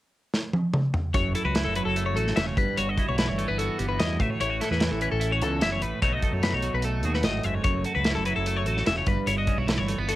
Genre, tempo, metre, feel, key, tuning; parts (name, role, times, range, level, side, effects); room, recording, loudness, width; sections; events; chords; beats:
math rock and midwest emo; 148 BPM; 4/4; straight; A4 = 440 Hz
modern studio drum kit; drums; 0.3-10.2 s; hi-hat, kick drum, snare drum, toms; -27 LUFS; equal; cassette tape
twelve-string electric guitar; accompaniment; 1.1-10.2 s; E2 to A4; -30 LUFS; right 5 dB; wide subtle chorus, cassette tape
twelve-string electric guitar; arpeggios; 1.1-10.2 s; G4 to E5; -28 LUFS; left 6 dB; cassette tape
growling fingered electric bass; bass; 1.1-10.2 s; E1 to F#2; -29 LUFS; equal; overdrive
light reverb; home recording on cassette; -23 LUFS; side -15 dB against mid
0.0-1.1 A section; 1.1-10.2 B section
drum fill 0.3-1.1
0.0 N.C.; 1.1 F#m7; 2.6 Emadd9/G; 4.2 A6; 6.0 B7; 7.6 F#m7; 9.1 Emadd9/G
0.33 0.74 | 1.15 1.55 1.96 2.37 | 2.77 3.18 3.59 3.99 | 4.40 4.80 5.21 5.62 | 6.02 6.43 6.84 7.24 | 7.65 8.05 8.46 8.86 | 9.27 9.67 10.08